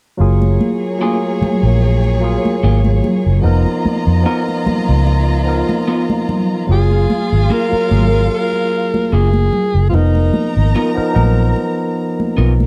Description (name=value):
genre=lush 1970s-style soul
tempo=74 BPM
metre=4/4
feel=swing 54% on 16ths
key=F# major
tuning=A4 = 437 Hz
part: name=warm studio violin section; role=second line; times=0.2-12.7 s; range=A#3 to A#5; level=-26 LUFS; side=equal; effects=none
part: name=barky tine electric piano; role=accompaniment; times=0.2-12.7 s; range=E#3 to A#4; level=-22 LUFS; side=equal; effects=overdrive
part: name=vintage muted fingered electric bass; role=bass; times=0.2-12.7 s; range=E#1 to E#2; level=-15 LUFS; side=equal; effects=none
part: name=congas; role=percussion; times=0.4-12.7 s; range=none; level=-24 LUFS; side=equal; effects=none
part: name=electric guitar through a small old amp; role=riff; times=1.0-12.5 s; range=A#3 to A#4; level=-23 LUFS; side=equal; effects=none
part: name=breathy alto saxophone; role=melody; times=6.7-11.2 s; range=D#4 to A#4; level=-21 LUFS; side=equal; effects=none
room=studio ambience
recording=dry, close 1970s-style studio recording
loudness=-15 LUFS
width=mono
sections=0.2-6.7 A section; 6.7-12.7 B section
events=none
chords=0.2 F#maj9; 3.5 C#13/E#; 6.7 F#maj9; 9.9 C#13/E# (rootless)